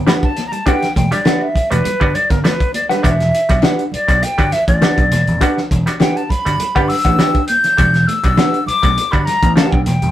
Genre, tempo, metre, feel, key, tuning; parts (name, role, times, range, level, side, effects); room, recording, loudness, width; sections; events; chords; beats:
funk; 101 BPM; 4/4; straight; E minor; A4 = 441 Hz
vintage slap bass; bass; 0.0-10.1 s; D#1 to B1; -18 LUFS; equal
breathy silver concert flute; melody; 0.1-10.1 s; A#4 to G6; -17 LUFS; left 1 dB
vintage hollow-body jazz guitar; accompaniment; 0.1-9.8 s; D4 to G5; -17 LUFS; equal
clean electric guitar; riff; 0.1-3.0, 7.8-10.1 s; G3 to B3; -26 LUFS; right 3 dB
muted clav; stabs; 0.1-9.8 s; G3 to A4; -23 LUFS; right 1 dB
cloth-damped thuddy drum kit; drums; 0.1-10.1 s; hi-hat, kick drum, snare drum; -17 LUFS; equal
congas; percussion; 0.1-10.0 s; -31 LUFS; left 1 dB
group handclap; percussion; 0.1-9.7 s; -34 LUFS; left 2 dB
moderate studio reverb, RT60 0.6 s; rough rehearsal-room recording; -12 LUFS; side -12 dB against mid
0.0-10.1 A section
flute solo 0.0-10.1
0.0 Em9
0.07 | 0.67 1.26 1.85 2.45 | 3.04 3.63 4.23 4.82 | 5.41 6.01 6.60 7.19 | 7.79 8.38 8.97 9.57